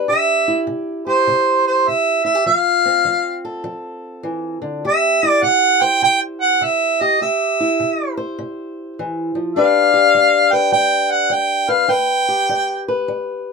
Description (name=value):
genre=acoustic country blues, solo or duo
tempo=102 BPM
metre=4/4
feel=swing 64% on 8ths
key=C major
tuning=A4 = 440 Hz
part: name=fingerpicked old ladder-braced acoustic guitar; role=accompaniment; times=0.0-13.5 s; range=C3 to C5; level=-21 LUFS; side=left 3 dB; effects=none
part: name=mellow harmonica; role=melody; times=0.1-12.9 s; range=C5 to G5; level=-14 LUFS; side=right 1 dB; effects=none
room=wet booth ambience, RT60 0.2 s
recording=minimal, uncompressed stereo recording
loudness=-14 LUFS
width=side -4 dB against mid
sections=0.1-13.5 A section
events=none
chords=0.1 C; 2.5 F; 4.8 C; 9.6 G